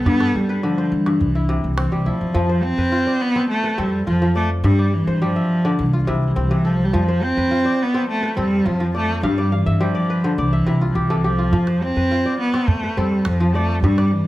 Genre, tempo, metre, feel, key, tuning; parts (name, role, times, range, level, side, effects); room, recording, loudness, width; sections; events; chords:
west african traditional, West African string and xylophone music; 105 BPM; 4/4; straight; F lydian; A4 = 440 Hz
warm cello; melody; 0.0-14.3 s; E3 to C4; -19 LUFS; right 1 dB
kora; arpeggios; 0.0-14.3 s; G2 to F5; -23 LUFS; left 2 dB
upright bass; bass; 0.0-14.2 s; C2 to G3; -22 LUFS; equal
calabash; percussion; 0.1-1.9, 11.5-14.1 s; -22 LUFS; right 1 dB
moderate recital hall reverb, RT60 1.4 s; -16 LUFS; side -16 dB against mid
0.0-2.4 A section; 2.4-14.3 B section
kora fill 9.2-11.5
0.1 G; 1.2 C; 2.4 F; 4.6 G5; 5.8 C; 6.9 F; 9.2 G5; 10.4 C; 11.5 F